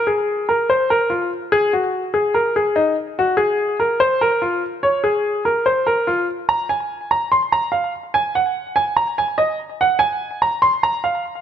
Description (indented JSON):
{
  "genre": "hip hop",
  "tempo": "145 BPM",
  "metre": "4/4",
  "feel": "half-time",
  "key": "Bb minor",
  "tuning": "A4 = 440 Hz",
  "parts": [
    { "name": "warm upright piano", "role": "solo", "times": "0.0-11.2 s", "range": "Eb4 to C6", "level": "-16 LUFS", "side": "equal", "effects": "low-pass filter, ping-pong delay" }
  ],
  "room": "moderate concert hall reverb, RT60 2.0 s",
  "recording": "none",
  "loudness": "-16 LUFS",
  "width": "side -9 dB against mid",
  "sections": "0.0-6.5 A section; 6.5-11.4 B section",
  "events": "none",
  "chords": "none",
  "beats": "0.28 0.69 1.11 | 1.52 1.94 2.35 2.76 | 3.18 3.59 4.00 4.42 | 4.83 5.25 5.66 6.07 | 6.49 6.90 7.31 7.73 | 8.14 8.55 8.97 9.38 | 9.80 10.21 10.62 11.04"
}